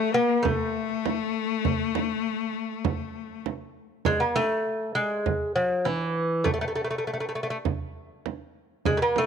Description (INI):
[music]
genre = Persian modal ensemble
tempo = 100 BPM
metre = 4/4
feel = straight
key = A dastgah chahargah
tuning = A4 = 441 Hz
[part]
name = lute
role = melody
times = 0.0-9.3 s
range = E3 to Bb3+45c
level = -25 LUFS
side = equal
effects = none
[part]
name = clear cello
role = second line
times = 0.0-3.4 s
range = A3 to Bb3+47c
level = -28 LUFS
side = left 10 dB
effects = none
[part]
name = frame drum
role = percussion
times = 0.5-9.3 s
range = none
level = -28 LUFS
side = right 6 dB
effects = none
[sound]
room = moderate echo chamber reverb, RT60 2.2 s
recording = 1960s-style stereo with parts hard left and right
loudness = -24 LUFS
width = side -7 dB against mid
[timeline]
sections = 0.0-4.0 A section; 4.0-9.3 B section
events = none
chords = none